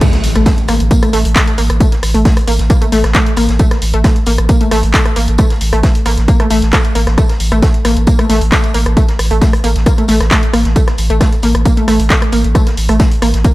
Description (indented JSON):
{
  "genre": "driving peak-time techno",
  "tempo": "134 BPM",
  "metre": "4/4",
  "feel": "straight",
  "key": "unclear",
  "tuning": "A4 = 438 Hz",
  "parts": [
    { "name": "analog pluck", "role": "riff", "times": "0.0-13.5 s", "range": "A3 to Bb3", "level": "-16 LUFS", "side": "equal", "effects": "chorus, overdrive, sidechain pumping, digital delay" },
    { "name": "electronic kick drum", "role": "drums", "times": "0.0-13.5 s", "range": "none", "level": "-12 LUFS", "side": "equal", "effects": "none" },
    { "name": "punchy analog drum machine", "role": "drums", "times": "0.0-13.5 s", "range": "crash cymbal, handclaps, hi-hat, rim click", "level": "-19 LUFS", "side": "equal", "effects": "none" },
    { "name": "street-band drum kit", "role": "drums", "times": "0.0-13.5 s", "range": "hi-hat, snare drum, tambourine", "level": "-28 LUFS", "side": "equal", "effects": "sidechain pumping on hats, high-pass filter on hats, high-pass filter on snare, sidechain pumping on perc, high-pass filter on perc, high-pass filter on room" },
    { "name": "impact", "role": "sound effects", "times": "0.0-1.8 s", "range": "none", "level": "-21 LUFS", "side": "equal", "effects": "none" },
    { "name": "saturated sub bass", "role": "bass", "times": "0.2-13.4 s", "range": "A1", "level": "-13 LUFS", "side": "equal", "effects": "sidechain pumping, low-pass filter" }
  ],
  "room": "small room ambience",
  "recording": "none",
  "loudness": "-9 LUFS",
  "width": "side -18 dB against mid",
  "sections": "0.0-13.5 A section",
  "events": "drop 0.0-13.5; impact 0.0-1.8",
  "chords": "none"
}